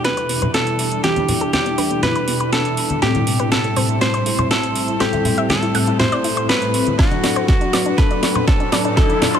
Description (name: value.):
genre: progressive house.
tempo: 121 BPM.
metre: 4/4.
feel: straight.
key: unclear.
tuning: A4 = 440 Hz.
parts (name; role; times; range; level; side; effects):
direct-recorded clean electric guitar; melody; 0.0-9.4 s; F#4 to C5; -23 LUFS; right 1 dB; sidechain pumping, dub echo.
soft synth bell; second line; 0.0-9.4 s; F#4 to C5; -29 LUFS; equal; none.
shimmering ambient pad; sustained chords; 0.0-9.4 s; A2 to F#4; -24 LUFS; right 1 dB; chorus, built-in reverb, sidechain pumping.
analog pluck; arpeggios; 0.0-9.4 s; A3 to F#5; -26 LUFS; left 1 dB; chorus, sidechain pumping, dub echo.
chorused polysynth; stabs; 0.0-9.4 s; A2 to C5; -22 LUFS; left 2 dB; sidechain pumping.
house drum kit; drums; 0.0-9.4 s; hi-hat, snare drum; -22 LUFS; right 1 dB; none.
congas and woodblock; percussion; 0.4-9.3 s; none; -25 LUFS; left 1 dB; sidechain pumping on perc.
electronic kick drum; drums; 7.0-9.1 s; none; -16 LUFS; equal; none.
riser; sound effects; 7.9-9.4 s; none; -27 LUFS; right 2 dB; none.
room: light reverb, digital ambience.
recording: none.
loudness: -15 LUFS.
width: side -8 dB against mid.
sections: 0.0-9.4 A section.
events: build-up 0.0-9.4; drum fill 0.0-9.4; filter sweep on synth arpeggio sound 0.0-9.4; filter sweep on analog polysynth 0.0-9.4; filter sweep on ambient pad 0.0-9.4; riser 7.9-9.4.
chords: 0.0 Em7; 3.0 Am7; 7.0 D.